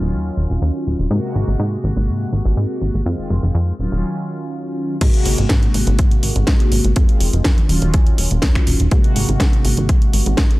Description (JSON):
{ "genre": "filtered disco house", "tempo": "123 BPM", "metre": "4/4", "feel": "straight", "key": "Ab mixolydian", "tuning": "A4 = 442 Hz", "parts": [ { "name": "mellow synth brass", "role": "accompaniment", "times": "0.0-10.6 s", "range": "C3 to Gb4", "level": "-23 LUFS", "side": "equal", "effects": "chorus, phaser, sidechain pumping, low-pass filter" }, { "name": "plucky analog bass", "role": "bass", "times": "0.0-10.5 s", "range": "Eb1 to Ab2", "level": "-18 LUFS", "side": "equal", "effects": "sidechain pumping, low-pass filter" }, { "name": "electronic kick drum", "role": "drums", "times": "5.0-10.5 s", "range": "none", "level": "-15 LUFS", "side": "equal", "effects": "overdrive" }, { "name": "house drum kit", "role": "drums", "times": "5.0-10.6 s", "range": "crash cymbal, finger snaps, hi-hat, snare drum", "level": "-23 LUFS", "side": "equal", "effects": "overdrive, sidechain pumping on hats, sidechain pumping on cymbals" } ], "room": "little or no reverb", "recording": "dry, gritty hardware recording", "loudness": "-15 LUFS", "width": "side -19 dB against mid", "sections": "0.0-5.0 A section; 5.0-10.6 B section", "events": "filter sweep 0.0-5.0; break 4.0-5.0; drop 5.0-10.6", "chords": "0.0 Ebm9; 1.1 Ab9; 3.1 Fm7; 3.8 Ebm9; 5.0 Ab9; 7.0 Fm7; 7.7 Ebm9; 8.9 Ab9" }